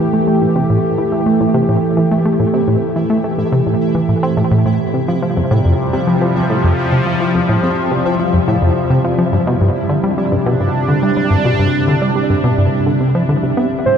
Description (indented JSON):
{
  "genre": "ambient, sequencer-driven space music",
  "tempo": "106 BPM",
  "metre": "4/4",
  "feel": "straight",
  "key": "unclear",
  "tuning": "A4 = 443 Hz",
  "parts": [
    { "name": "sweeping resonant pad", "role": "sustained chords", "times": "0.0-14.0 s", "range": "C3 to G4", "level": "-15 LUFS", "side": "equal", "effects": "chorus" },
    { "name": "plucky analog bass", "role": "riff", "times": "0.0-13.9 s", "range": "F2 to C4", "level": "-16 LUFS", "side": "equal", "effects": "tape echo" },
    { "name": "pulsing gated texture", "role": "texture", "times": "0.0-14.0 s", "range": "C4 to E5", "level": "-29 LUFS", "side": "left 1 dB", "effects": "chorus, built-in reverb" },
    { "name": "soft octave-layered synth lead", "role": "melody", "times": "13.9-14.0 s", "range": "C5", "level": "-10 LUFS", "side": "right 4 dB", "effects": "chorus" }
  ],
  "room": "wet huge ambient reverb, RT60 7.7 s",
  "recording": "cassette tape",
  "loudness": "-12 LUFS",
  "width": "side -8 dB against mid",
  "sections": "0.0-14.0 A section",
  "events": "fade-in on synth texture 0.0-14.0",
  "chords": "0.0 A7(no3); 4.8 Fsus2; 9.3 Gsus4"
}